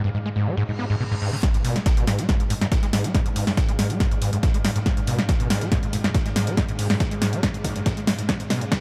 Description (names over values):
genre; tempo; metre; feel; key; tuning
driving peak-time techno; 140 BPM; 4/4; straight; G# harmonic minor; A4 = 440 Hz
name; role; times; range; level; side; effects
screaming distorted acid line; riff; 0.0-8.8 s; G2 to B3; -28 LUFS; equal; distortion, chorus, sidechain pumping, diffuse ambient delay
metallic inharmonic drone; drone; 0.0-8.8 s; G#2 to G#3; -33 LUFS; equal; chorus, built-in reverb, sidechain pumping
punchy analog drum machine; drums; 0.0-8.8 s; hi-hat, snare drum; -28 LUFS; equal; low-pass filter on hats, low-pass filter on snare
reverse cymbal; sound effects; 0.7-1.4 s; none; -42 LUFS; equal; none
breakbeat sampler-style drum kit; drums; 1.4-8.8 s; hi-hat, snare drum; -41 LUFS; equal; none
electronic kick drum; drums; 1.4-8.8 s; none; -25 LUFS; equal; none
room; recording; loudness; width
light reverb; high-pass filter; -23 LUFS; mono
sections
0.0-1.4 A section; 1.4-8.8 B section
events
reverse cymbal 0.7-1.4; build-up 1.4-8.8; drum fill 1.4-8.8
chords
0.0 G#5